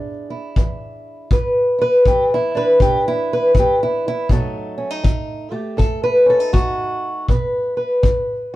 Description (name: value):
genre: acoustic country blues, solo or duo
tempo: 80 BPM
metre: 4/4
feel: swing 63% on 8ths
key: E mixolydian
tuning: A4 = 440 Hz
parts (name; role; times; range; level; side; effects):
- fingerpicked old ladder-braced acoustic guitar; melody; 0.0-8.6 s; E2 to B4; -17 LUFS; equal; none
- kick drum; drums; 0.6-8.3 s; none; -18 LUFS; equal; none
room: moderate booth ambience, RT60 0.2 s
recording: heard from further back in the room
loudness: -15 LUFS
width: side -16 dB against mid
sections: 0.0-8.6 A section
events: none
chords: 0.0 E7; 4.3 B7